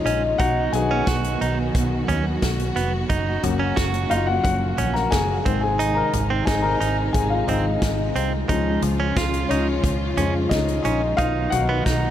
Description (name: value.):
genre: piano-driven pop.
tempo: 89 BPM.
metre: 4/4.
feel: straight.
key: F# major.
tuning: A4 = 440 Hz.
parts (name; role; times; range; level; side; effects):
warm grand piano; accompaniment; 0.0-12.1 s; D#3 to A#5; -24 LUFS; left 4 dB; none.
warm studio string section; sustained chords; 0.0-12.1 s; B2 to F#4; -27 LUFS; right 1 dB; none.
direct-recorded clean electric guitar; riff; 0.1-12.1 s; B3 to F#4; -27 LUFS; right 6 dB; none.
vintage muted fingered electric bass; bass; 0.1-12.1 s; E#1 to E#2; -25 LUFS; equal; none.
natural country drum kit; drums; 0.1-12.0 s; hi-hat, kick drum, snare drum, toms; -27 LUFS; equal; none.
room: moderate huge ambient reverb, RT60 4.8 s.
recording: dreamy mix soaked in reverb.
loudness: -19 LUFS.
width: side -11 dB against mid.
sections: 0.0-12.1 A section.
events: grand piano solo 0.0-12.1.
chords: 0.4 B; 3.1 F#; 5.5 G#; 8.5 C#; 11.2 B.